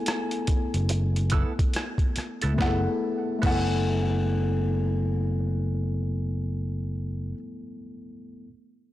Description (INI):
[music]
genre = R&B, neo-soul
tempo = 71 BPM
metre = 4/4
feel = swing 62% on 16ths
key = F# minor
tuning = A4 = 440 Hz
[part]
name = warm baby grand piano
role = melody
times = 0.0-7.3 s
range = F#5 to G#5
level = -36 LUFS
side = equal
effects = tape echo
[part]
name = barky tine electric piano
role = accompaniment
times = 0.0-8.5 s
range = A3 to G#5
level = -30 LUFS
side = left 3 dB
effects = none
[part]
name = boom bap sampler-style drum kit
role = drums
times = 0.1-3.7 s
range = crash cymbal, hi-hat, kick drum, rim click, snare drum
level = -28 LUFS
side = equal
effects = soft clipping on snare
[part]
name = fingered electric bass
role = bass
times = 0.5-7.3 s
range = F#1 to C#2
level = -26 LUFS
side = equal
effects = tube saturation
[part]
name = hollow-body jazz guitar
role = second line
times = 0.9-7.4 s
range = B3 to A4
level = -36 LUFS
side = right 6 dB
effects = wah
[sound]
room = light reverb, digital ambience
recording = blown-out, overdriven recording, overdrive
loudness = -24 LUFS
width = side -15 dB against mid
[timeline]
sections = 0.0-2.6 A section; 2.6-6.0 B section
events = none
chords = 0.0 F#m11